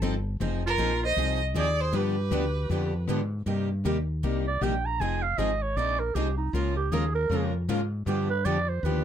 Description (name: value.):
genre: acoustic string swing (jazz manouche).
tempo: 157 BPM.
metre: 4/4.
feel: swing 62% on 8ths.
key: C minor.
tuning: A4 = 440 Hz.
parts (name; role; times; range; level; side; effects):
picked plugged-in steel-string acoustic guitar; accompaniment; 0.0-9.0 s; C3 to Bb4; -32 LUFS; left 6 dB; none.
picked steel-string acoustic guitar; accompaniment; 0.0-9.0 s; C3 to Bb4; -35 LUFS; right 7 dB; none.
woody fretless electric bass; bass; 0.0-9.0 s; F1 to Ab2; -28 LUFS; equal; none.
warm violin; melody; 0.7-3.1 s; Bb4 to Eb5; -29 LUFS; right 2 dB; none.
growling clarinet; second line; 0.7-9.0 s; Eb4 to Bb5; -30 LUFS; right 5 dB; none.
room: light reverb.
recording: close, detailed microphones.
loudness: -25 LUFS.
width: side -9 dB against mid.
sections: 0.0-3.5 A section; 3.5-9.0 B section.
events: clarinet solo 3.5-9.0.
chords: 0.4 Fm7; 1.9 G7b9; 3.5 Cm7; 5.0 Fm7; 6.5 Db6; 8.1 G7.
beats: 0.03 | 0.41 0.79 1.17 1.56 | 1.94 2.32 2.71 3.09 | 3.47 3.85 4.24 4.62 | 5.00 5.39 5.77 6.15 | 6.54 6.92 7.30 7.68 | 8.07 8.45 8.83.